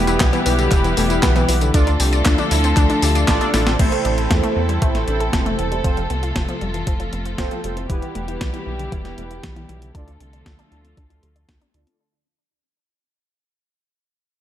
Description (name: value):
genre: italo disco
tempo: 117 BPM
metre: 4/4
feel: straight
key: A minor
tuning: A4 = 440 Hz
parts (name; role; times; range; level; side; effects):
- warm studio string section; sustained chords; 0.0-12.0 s; B2 to A4; -24 LUFS; equal; low-pass filter
- analog synth brass; stabs; 0.0-12.0 s; B3 to D5; -24 LUFS; right 3 dB; chorus, tape echo
- round analog bass; bass; 0.0-11.9 s; E1 to E2; -22 LUFS; equal; none
- wide unison pluck; arpeggios; 0.1-12.0 s; D3 to D5; -26 LUFS; left 4 dB; tape echo
- clean 12-bit digital drum machine; drums; 0.1-12.0 s; crash cymbal, handclaps, hi-hat, snare drum, tambourine; -24 LUFS; left 1 dB; overdrive, gated reverb
- electronic kick drum; drums; 0.2-11.6 s; none; -20 LUFS; equal; overdrive
room: light reverb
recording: none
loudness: -16 LUFS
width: side -11 dB against mid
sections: 0.0-3.8 A section; 3.8-12.0 B section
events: drum fill 3.5; fade-out 3.8-12.0; filter sweep on synth arpeggio sound 3.8-12.0; filter sweep on analog polysynth 3.8-12.0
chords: 0.0 Em; 1.7 Dm; 3.8 Am; 5.8 F; 7.9 Em; 9.9 Dm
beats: 0.20 0.72 1.23 | 1.74 2.25 2.77 3.28 | 3.79 4.31 4.82 5.33 | 5.84 6.36 6.87 7.38 | 7.90 8.41 8.92 9.43 | 9.95 10.46 10.97 11.49